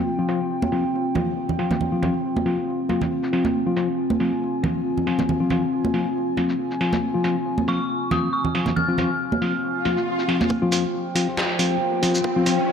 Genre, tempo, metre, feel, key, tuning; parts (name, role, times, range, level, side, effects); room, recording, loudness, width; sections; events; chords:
deep dubstep; 138 BPM; 4/4; swing 55% on 16ths, half-time; F minor; A4 = 444 Hz
dark analog pad; sustained chords; 0.0-12.7 s; C4 to Ab5; -26 LUFS; equal; chorus
mellow tine electric piano; stabs; 0.2-12.6 s; F3 to F4; -24 LUFS; left 3 dB; low-pass filter, dub echo
trip hop sampler-style drum kit; drums; 0.3-12.6 s; hi-hat, shaker, snare drum; -29 LUFS; right 2 dB; high-pass filter on hats, low-pass filter on hats, high-pass filter on perc, low-pass filter on perc, high-pass filter on snare, low-pass filter on snare, high-pass filter on room, low-pass filter on room
congas; percussion; 0.6-10.5 s; -26 LUFS; right 3 dB; dub echo
dark detuned synth bell; melody; 7.7-10.0 s; Db6 to F6; -28 LUFS; equal; chorus, dub echo
swell and riser; sound effects; 9.7-12.7 s; -29 LUFS; equal
electronic kick drum; drums; 10.5-12.3 s; -27 LUFS; equal; high-pass filter on kick
wet lush hall reverb, RT60 1.8 s, digital ambience; dark, warm production; -20 LUFS; side -7 dB against mid
0.0-10.5 A section; 10.5-12.7 B section
swell 9.7-10.5; build-up 10.5-12.7; riser 10.5-12.7
0.0 F5